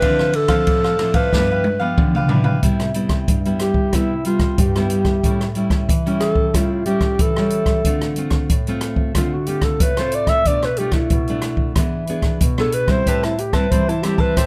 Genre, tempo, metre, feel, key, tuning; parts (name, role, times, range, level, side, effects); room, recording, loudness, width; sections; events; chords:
samba and choro; 92 BPM; 4/4; straight; C major; A4 = 440 Hz
breathy alto saxophone; melody; 0.0-14.5 s; E4 to E5; -23 LUFS; equal; plate reverb
cavaquinho; accompaniment; 0.0-2.6, 13.1-14.5 s; D4 to A5; -28 LUFS; equal
nylon-string guitar; accompaniment; 0.0-14.5 s; G2 to G#4; -24 LUFS; equal
open jazz drum kit; drums; 0.0-14.5 s; hi-hat, kick drum, ride cymbal, rim click, snare drum, toms; -22 LUFS; equal
light reverb; close, detailed microphones; -18 LUFS; mono
0.0-2.6 A section; 2.6-14.5 B section
drum fill 1.3-2.6; alto saxophone solo 2.6-14.5
0.0 Dm9; 1.3 G6; 2.6 Cmaj7; 5.2 A7; 7.8 Dm7; 10.5 Bm7b5; 11.8 E7; 13.1 Am7